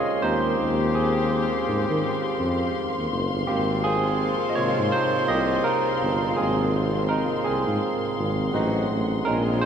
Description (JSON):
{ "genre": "R&B, neo-soul", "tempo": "83 BPM", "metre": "4/4", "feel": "swing 60% on 16ths", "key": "unclear", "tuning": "A4 = 440 Hz", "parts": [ { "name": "barky tine electric piano", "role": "accompaniment", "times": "0.0-9.7 s", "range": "C3 to F5", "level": "-24 LUFS", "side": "right 2 dB", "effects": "overdrive" }, { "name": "dark studio string section", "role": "sustained chords", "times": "0.0-9.7 s", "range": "Ab3 to C6", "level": "-30 LUFS", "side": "left 1 dB", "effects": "none" }, { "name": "clear horn section", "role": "stabs", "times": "0.2-9.7 s", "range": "F3 to Ab4", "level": "-31 LUFS", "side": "left 4 dB", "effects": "none" }, { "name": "mellow tuba", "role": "bass", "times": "0.2-9.7 s", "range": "Gb1 to Eb3", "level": "-26 LUFS", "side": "left 1 dB", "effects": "none" } ], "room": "wet cathedral reverb, RT60 4.6 s", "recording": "recorded in a church or concert hall", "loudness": "-21 LUFS", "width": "side -8 dB against mid", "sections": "0.0-9.7 A section", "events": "tine electric piano solo 0.0-9.7", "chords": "0.2 Eb13sus4; 3.5 Ab69; 8.5 Adim7" }